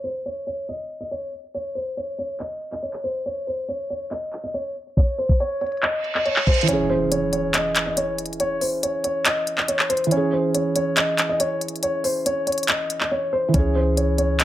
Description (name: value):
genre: hip hop, trap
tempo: 140 BPM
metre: 4/4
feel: half-time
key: C# harmonic minor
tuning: A4 = 440 Hz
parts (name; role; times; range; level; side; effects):
- dark concert grand piano; melody; 0.0-14.4 s; B#4 to D#5; -24 LUFS; left 1 dB; low-pass filter
- trap drum kit; drums; 0.3-14.4 s; handclaps, hi-hat, kick drum; -21 LUFS; equal; none
- reverse cymbal and impact; sound effects; 6.0-8.4 s; none; -29 LUFS; right 2 dB; none
- felt-muted upright piano; accompaniment; 6.6-14.4 s; E3 to G#4; -25 LUFS; right 3 dB; low-pass filter
- clean 808-style bass; bass; 13.5-14.4 s; C#2; -21 LUFS; equal; none
room: light reverb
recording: low-pass filter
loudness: -20 LUFS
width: side -13 dB against mid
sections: 0.0-6.7 A section; 6.7-14.4 B section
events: filter sweep 0.0-6.7; reverse cymbal 6.0-6.7; kick muted 6.7-13.5; impact 6.7-8.4; silent gap 13.1-13.5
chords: 0.0 N.C.; 6.7 C#m